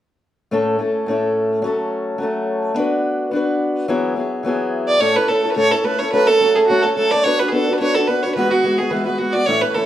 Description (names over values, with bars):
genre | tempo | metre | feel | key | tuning
celtic folk | 214 BPM | 4/4 | swing 55% on 8ths | A major | A4 = 442 Hz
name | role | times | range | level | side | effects
fingerpicked acoustic archtop guitar | accompaniment | 0.5-9.9 s | A2 to B4 | -18 LUFS | left 1 dB | none
rich fiddle | melody | 4.9-9.9 s | F#4 to D5 | -16 LUFS | right 2 dB | plate reverb
room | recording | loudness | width
wet studio reverb, RT60 0.5 s | heard from further back in the room | -16 LUFS | side -12 dB against mid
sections
0.5-5.0 A section; 5.0-9.9 B section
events
none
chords
0.5 A; 1.6 F#m; 2.8 Bm; 3.9 Eadd9; 5.0 A; 6.1 F#m; 7.2 Bm; 8.4 Eadd9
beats
| 0.52 0.80 1.08 1.36 | 1.64 1.92 2.20 2.48 | 2.76 3.04 3.33 3.61 | 3.89 4.17 4.45 4.73 | 5.01 5.29 5.57 5.85 | 6.12 6.41 6.68 6.96 | 7.24 7.52 7.80 8.08 | 8.36 8.64 8.92 9.20 | 9.48 9.76